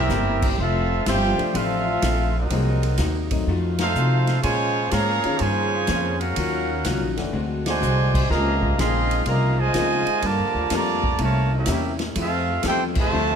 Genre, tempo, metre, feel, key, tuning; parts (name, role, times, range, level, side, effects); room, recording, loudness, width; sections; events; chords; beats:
jazz, big band swing; 124 BPM; 4/4; swing 68% on 8ths; A4 = 440 Hz
clear trumpet section; melody; 0.0-13.4 s; C4 to C6; -24 LUFS; right 2 dB
clear trombone section; second line; 0.0-13.4 s; A2 to Ab4; -29 LUFS; right 1 dB
warm saxophone section; sustained chords; 0.0-13.4 s; Bb2 to Ab4; -35 LUFS; left 1 dB
upright bass; bass; 0.0-13.4 s; F1 to C3; -24 LUFS; equal
archtop guitar, miked and amplified; accompaniment; 0.1-13.4 s; C3 to C5; -30 LUFS; left 5 dB
swinging big-band drum kit; drums; 0.1-13.0 s; crash cymbal, hi-hat, kick drum, ride cymbal, snare drum; -29 LUFS; equal
warm upright piano; accompaniment; 1.4-13.4 s; Eb3 to A4; -32 LUFS; left 7 dB
light reverb; -19 LUFS; side -7 dB against mid
0.6-13.4 A section
band accent 3.7, 7.6, 12.9; drum fill 7.3-7.8
0.0 C7; 0.6 Fmaj7; 2.5 Cm7b5; 3.5 F7b9; 4.4 Bbm9; 6.4 Ebm9; 7.3 D7#11; 8.3 Dbmaj13; 10.2 Gm9; 11.2 C7b9; 12.2 Fmaj7
0.10 | 0.58 1.06 1.55 2.03 | 2.51 2.99 3.47 3.96 | 4.44 4.92 5.40 5.88 | 6.36 6.85 7.33 7.81 | 8.29 8.78 9.26 9.74 | 10.22 10.70 11.19 11.67 | 12.15 12.63 13.12